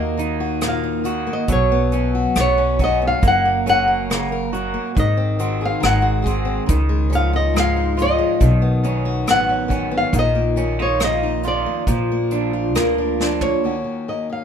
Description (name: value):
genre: acoustic folk-pop ballad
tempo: 69 BPM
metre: 4/4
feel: straight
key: Eb minor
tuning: A4 = 440 Hz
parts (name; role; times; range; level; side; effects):
- flamenco guitar; melody; 0.0-14.4 s; Bb4 to Gb5; -20 LUFS; equal; none
- fingerpicked steel-string acoustic guitar; accompaniment; 0.0-14.4 s; Eb2 to Bb4; -24 LUFS; left 6 dB; none
- electric guitar through a small old amp; arpeggios; 0.0-13.7 s; Eb3 to Gb4; -24 LUFS; right 6 dB; harmonic tremolo
- upright bass; bass; 0.0-13.5 s; Gb1 to Eb2; -22 LUFS; equal; none
- soft brush drum kit; drums; 0.2-13.6 s; hi-hat, kick drum, rim click, snare drum, toms; -23 LUFS; equal; none
room: little or no reverb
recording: minimal, uncompressed stereo recording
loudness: -16 LUFS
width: side -8 dB against mid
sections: 0.0-13.6 A section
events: drum fill 13.2-13.6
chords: 0.0 Ebm; 1.5 Bsus2; 3.2 Gb; 5.0 Ab7; 6.7 Dbadd9; 8.4 Badd9; 10.1 Bbsus4; 11.9 Bb; 13.6 Ebm7